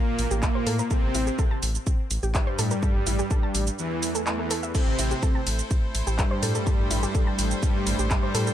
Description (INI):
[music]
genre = melodic techno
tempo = 125 BPM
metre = 4/4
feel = straight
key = unclear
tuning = A4 = 440 Hz
[part]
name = soft supersaw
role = melody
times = 0.0-8.5 s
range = E3 to C4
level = -30 LUFS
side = left 1 dB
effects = sidechain pumping, ping-pong delay
[part]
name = soft supersaw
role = second line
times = 0.0-8.5 s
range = E2 to C3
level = -33 LUFS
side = right 1 dB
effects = sidechain pumping, ping-pong delay
[part]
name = round analog bass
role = bass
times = 0.2-8.5 s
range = A1 to A2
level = -27 LUFS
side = equal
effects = sidechain pumping
[part]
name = house drum kit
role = drums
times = 0.2-8.5 s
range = crash cymbal, handclaps, hi-hat, ride cymbal, shaker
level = -31 LUFS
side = right 2 dB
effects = none
[part]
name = soft round pluck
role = arpeggios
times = 0.3-8.5 s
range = E4 to A6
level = -34 LUFS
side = equal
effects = chorus, sidechain pumping, ping-pong delay
[part]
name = electronic kick drum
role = drums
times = 0.4-8.2 s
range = none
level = -24 LUFS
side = equal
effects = none
[part]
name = swell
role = sound effects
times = 4.0-4.7 s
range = none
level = -35 LUFS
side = right 6 dB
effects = none
[part]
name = rich studio string section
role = sustained chords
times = 4.7-8.5 s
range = A3 to C5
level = -34 LUFS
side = equal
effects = sidechain pumping
[sound]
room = little or no reverb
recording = none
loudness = -22 LUFS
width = side -11 dB against mid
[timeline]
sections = 0.0-8.5 A section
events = break 3.8-4.7; swell 4.0-4.7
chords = 0.0 C/A; 4.7 Am